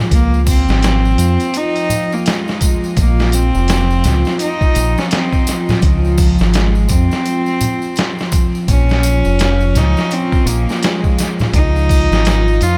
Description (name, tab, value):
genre	trip hop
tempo	84 BPM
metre	4/4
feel	swing 60% on 16ths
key	unclear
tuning	A4 = 441 Hz
part	dark analog pad	sustained chords	0.0-12.8 s	F3 to F4	-24 LUFS	equal	chorus, vintage 12-bit sampler grit
part	rich cello	melody	0.1-12.8 s	F3 to F4	-21 LUFS	equal	tape echo
part	deep dub fingered electric bass	bass	0.1-12.8 s	F1 to F2	-17 LUFS	equal	tube saturation
part	trip hop sampler-style drum kit	drums	0.1-12.8 s	hi-hat, kick drum, snare drum	-19 LUFS	equal	none
part	tambourine and congas	percussion	0.1-12.8 s	none	-27 LUFS	equal	none
room	light reverb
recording	none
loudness	-14 LUFS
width	mono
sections	0.0-12.8 A section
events	none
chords	0.1 Dbmaj7; 3.0 Bbsus2; 5.8 Dbmaj7; 8.7 Bbm; 11.5 Db